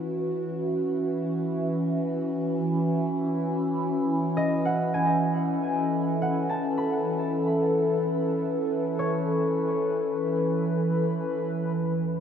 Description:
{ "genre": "ambient", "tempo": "free time", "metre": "none", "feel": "none", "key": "unclear", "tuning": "A4 = 441 Hz", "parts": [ { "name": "warbly tape-like pad", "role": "sustained chords", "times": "0.0-12.2 s", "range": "E3 to B4", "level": "-25 LUFS", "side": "equal", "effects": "chorus, built-in reverb" }, { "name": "overtone-sweeping drone", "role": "drone", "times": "0.0-11.9 s", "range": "E3 to E4", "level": "-34 LUFS", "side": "equal", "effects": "chorus, built-in reverb, phaser" }, { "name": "concert harp", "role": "arpeggios", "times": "4.4-11.6 s", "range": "C#5 to B5", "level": "-31 LUFS", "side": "right 1 dB", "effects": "diffuse ambient delay" }, { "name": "warm sub bass", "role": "bass", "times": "11.8-12.2 s", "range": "E2", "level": "-58 LUFS", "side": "right 1 dB", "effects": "none" } ], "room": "wet cathedral reverb, RT60 5.8 s", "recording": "in a vast, echoing space", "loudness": "-24 LUFS", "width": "side -8 dB against mid", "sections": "0.0-11.8 A section", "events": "fade-in on synth drone 0.0-11.8; filter sweep on ambient pad 0.0-11.8", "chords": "0.0 Esus2; 4.4 F#m7/E" }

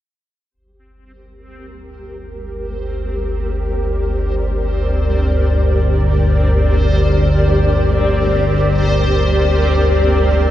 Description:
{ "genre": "dark ambient drone", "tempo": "free time", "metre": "none", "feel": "none", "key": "G minor", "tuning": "A4 = 440 Hz", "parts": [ { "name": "granular cloud pad", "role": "sustained chords", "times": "2.0-10.5 s", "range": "G4 to D5", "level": "-19 LUFS", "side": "equal", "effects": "built-in reverb" }, { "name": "analog drone", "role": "drone", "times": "2.4-10.5 s", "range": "G1 to D2", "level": "-15 LUFS", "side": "equal", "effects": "lush chorus" }, { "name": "backwards swelling texture", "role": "texture", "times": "1.1-10.5 s", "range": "C4 to C5", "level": "-28 LUFS", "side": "equal", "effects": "built-in reverb" } ], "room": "moderate huge ambient reverb, RT60 7.8 s", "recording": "none", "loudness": "-13 LUFS", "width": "side -12 dB against mid", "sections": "0.5-10.5 A section", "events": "fade-in on synth texture 0.5-10.5", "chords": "0.5 Gm" }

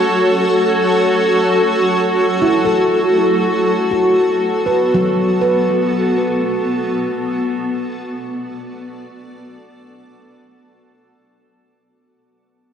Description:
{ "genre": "ambient", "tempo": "free time", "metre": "none", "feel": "none", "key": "unclear", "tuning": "A4 = 440 Hz", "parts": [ { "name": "granular cloud pad", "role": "sustained chords", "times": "0.0-11.8 s", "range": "B3 to D5", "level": "-15 LUFS", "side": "equal", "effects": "built-in reverb" }, { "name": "glass harmonica", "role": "texture", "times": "0.0-11.8 s", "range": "A5", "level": "-27 LUFS", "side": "left 1 dB", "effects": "none" }, { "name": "handpan", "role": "arpeggios", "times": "2.4-8.4 s", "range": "F#3 to B4", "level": "-18 LUFS", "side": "right 1 dB", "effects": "tape echo" } ], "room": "wet concert hall reverb, RT60 2.0 s", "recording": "dark, warm production", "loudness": "-13 LUFS", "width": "side -8 dB against mid", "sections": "0.0-11.8 A section", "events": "fade-out 1.1-11.8", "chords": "0.0 F#m; 3.8 Bm7" }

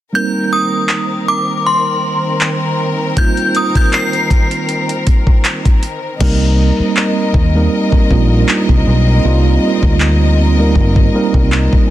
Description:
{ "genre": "contemporary R&B", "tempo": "79 BPM", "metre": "4/4", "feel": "swing 54% on 16ths", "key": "C minor", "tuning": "A4 = 441 Hz", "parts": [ { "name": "mellow tine electric piano", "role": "accompaniment", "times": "0.1-11.9 s", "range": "G3 to Bb4", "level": "-17 LUFS", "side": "right 4 dB", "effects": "medium stereo tremolo" }, { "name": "warm studio string section", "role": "sustained chords", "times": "0.1-11.9 s", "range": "Eb3 to Eb5", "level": "-21 LUFS", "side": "left 2 dB", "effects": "none" }, { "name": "synth chime", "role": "melody", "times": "0.2-5.4 s", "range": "C6 to C7", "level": "-17 LUFS", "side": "left 1 dB", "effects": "ensemble chorus, ping-pong delay" }, { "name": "smooth R&B drum kit", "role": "drums", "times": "0.9-11.9 s", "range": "crash cymbal, handclaps, hi-hat, kick drum", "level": "-13 LUFS", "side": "equal", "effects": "none" }, { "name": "vintage muted fingered electric bass", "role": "bass", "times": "6.2-11.7 s", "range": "G1 to Eb2", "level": "-12 LUFS", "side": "left 1 dB", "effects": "none" } ], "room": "little or no reverb", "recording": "dense, heavily limited modern master", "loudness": "-11 LUFS", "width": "side -14 dB against mid", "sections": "0.1-6.2 A section; 6.2-11.9 B section", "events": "hi-hats muted 6.2-11.9", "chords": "0.1 Cm7" }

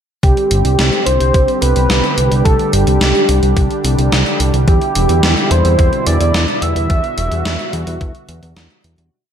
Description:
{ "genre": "synthwave", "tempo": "108 BPM", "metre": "4/4", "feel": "straight", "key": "E minor", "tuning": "A4 = 440 Hz", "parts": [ { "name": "wide unison lead", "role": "melody", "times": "0.2-8.6 s", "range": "G4 to E5", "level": "-18 LUFS", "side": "equal", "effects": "tape echo" }, { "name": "soft supersaw", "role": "sustained chords", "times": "0.2-9.1 s", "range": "B2 to G4", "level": "-20 LUFS", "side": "right 2 dB", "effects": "sidechain pumping" }, { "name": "fat analog bass", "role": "bass", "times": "0.2-9.1 s", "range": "E1 to E2", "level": "-15 LUFS", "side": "equal", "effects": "sidechain pumping" }, { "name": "electronic kick drum", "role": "drums", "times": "0.2-8.1 s", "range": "none", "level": "-14 LUFS", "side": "equal", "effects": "none" }, { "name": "gated 80s digital drum machine", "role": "drums", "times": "0.2-9.1 s", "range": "hi-hat, snare drum", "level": "-19 LUFS", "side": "equal", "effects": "gated reverb, gated reverb snare" } ], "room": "digital ambience", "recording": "none", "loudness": "-11 LUFS", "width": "side -8 dB against mid", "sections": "0.2-9.1 verse", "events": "fade-out 6.2-9.1", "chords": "0.2 Csus2; 4.7 Em7" }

